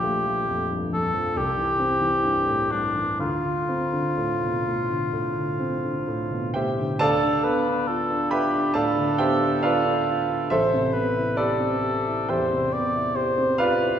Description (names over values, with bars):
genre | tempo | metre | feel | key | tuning
classical, impressionist duo for cor anglais and grand piano | 62-71 BPM | 4/4 | rubato | D dorian | A4 = 441 Hz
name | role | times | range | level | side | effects
mellow cor anglais | melody | 0.0-14.0 s | D4 to D5 | -24 LUFS | left 1 dB | none
warm grand piano | accompaniment | 0.0-14.0 s | A1 to B5 | -24 LUFS | right 1 dB | none
room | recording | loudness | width
wet recital hall reverb, RT60 1.5 s | heard from further back in the room | -21 LUFS | side -9 dB against mid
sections
0.0-7.0 A section; 7.0-14.0 B section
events
none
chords
0.0 Bb5; 1.4 C; 3.2 Dm7; 7.0 Dm6; 10.5 Am9